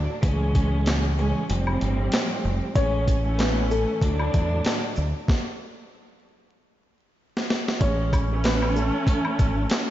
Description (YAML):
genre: hip hop, boom-bap hip-hop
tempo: 95 BPM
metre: 4/4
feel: swing 57% on 16ths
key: A major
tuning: A4 = 443 Hz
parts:
  - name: warm studio string section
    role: accompaniment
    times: 0.0-9.9 s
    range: C#2 to D4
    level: -27 LUFS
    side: right 1 dB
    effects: cassette tape, high-pass filter, low-pass filter
  - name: deep dub fingered electric bass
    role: bass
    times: 0.0-9.6 s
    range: F1 to E2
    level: -25 LUFS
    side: equal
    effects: none
  - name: boom bap sampler-style drum kit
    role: drums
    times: 0.2-9.9 s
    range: handclaps, hi-hat, kick drum, shaker, snare drum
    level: -25 LUFS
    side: equal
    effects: none
  - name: tube shaker and woodblock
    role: percussion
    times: 0.2-9.9 s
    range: none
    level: -36 LUFS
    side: left 1 dB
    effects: none
  - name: dark upright piano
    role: melody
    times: 2.8-9.7 s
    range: A3 to C#5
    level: -29 LUFS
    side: left 1 dB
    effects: lush chorus, high-pass filter, low-pass filter, analog delay
room: light reverb, small room ambience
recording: vinyl crackle, nothing above 7.6 kHz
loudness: -21 LUFS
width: side -13 dB against mid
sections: 0.0-7.8 A section; 7.8-9.9 B section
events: stop 5.3-7.8; drum fill 7.2-7.8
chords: 0.2 Amaj7/C#; 1.5 Fadd9; 2.8 Amaj7; 4.0 D; 5.3 N.C.; 7.8 Amaj7